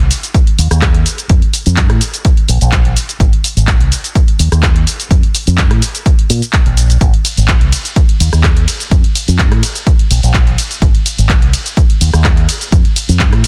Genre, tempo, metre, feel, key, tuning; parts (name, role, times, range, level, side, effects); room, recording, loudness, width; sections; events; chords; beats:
filtered disco house; 126 BPM; 4/4; straight; A4 = 444 Hz
fingered electric bass with an envelope filter; bass; 0.0-13.4 s; Ab1 to Bb2; -14 LUFS; equal; sidechain pumping
punchy analog drum machine; drums; 0.1-13.5 s; handclaps, hi-hat, ride cymbal, rim click, shaker; -20 LUFS; equal; sidechain pumping on perc, sidechain pumping on hats, sidechain pumping on cymbals
electronic kick drum; drums; 0.3-13.3 s; -13 LUFS; equal
digital ambience; dense, heavily limited modern master; -11 LUFS; mono
0.0-13.5 A section
0.34 0.82 | 1.30 1.77 2.25 2.73 | 3.20 3.68 4.16 4.63 | 5.11 5.58 6.06 6.54 | 7.01 7.49 7.96 8.44 | 8.92 9.39 9.87 10.35 | 10.82 11.30 11.77 12.25 | 12.73 13.20